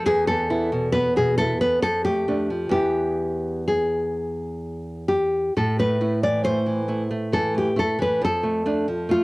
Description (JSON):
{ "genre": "romantic duo for nylon-string guitar and classical guitar", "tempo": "63-70 BPM", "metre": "3/4", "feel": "rubato", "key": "unclear", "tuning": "A4 = 440 Hz", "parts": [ { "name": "nylon-string guitar", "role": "melody", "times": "0.0-9.2 s", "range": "F4 to D5", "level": "-22 LUFS", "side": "left 1 dB", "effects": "none" }, { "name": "nylon-string guitar", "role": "accompaniment", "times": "0.0-9.2 s", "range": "E2 to E4", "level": "-25 LUFS", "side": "right 1 dB", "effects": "cassette tape" } ], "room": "light reverb", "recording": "home recording on cassette", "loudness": "-20 LUFS", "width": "side -22 dB against mid", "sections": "0.0-9.2 A section", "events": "none", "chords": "0.1 E5; 1.8 Dm/F; 2.7 E; 5.6 Am; 8.2 Dm/F", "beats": "| 0.06 0.93 1.82 | 2.74 3.68 4.62 | 5.56 6.45 7.33 | 8.21 9.09" }